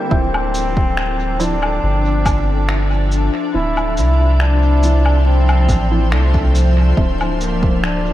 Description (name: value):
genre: ambient dub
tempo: 70 BPM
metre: 4/4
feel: straight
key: D minor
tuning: A4 = 440 Hz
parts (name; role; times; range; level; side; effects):
- warm trombone; melody; 0.0-8.1 s; A3 to E4; -22 LUFS; equal; dub echo
- soft additive organ-like pad; sustained chords; 0.0-8.1 s; D3 to E5; -22 LUFS; left 1 dB; ensemble chorus, built-in reverb
- filtered dub chord stab; stabs; 0.1-7.2 s; F3 to E4; -28 LUFS; right 3 dB; none
- soft dub sub bass; bass; 0.1-8.1 s; D1 to C2; -15 LUFS; equal; none
- electronic kick drum; drums; 0.1-7.8 s; none; -18 LUFS; equal; none
- electronic woodblock, shaker and finger snaps; drums; 0.3-8.0 s; none; -26 LUFS; left 1 dB; low-pass filter on perc, low-pass filter on snare, low-pass filter on room, dub echo
room: moderate huge ambient reverb, RT60 7.5 s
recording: dreamy mix soaked in reverb, vinyl crackle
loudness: -13 LUFS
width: side -14 dB against mid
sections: 0.1-8.1 A section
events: none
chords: 0.1 Dm9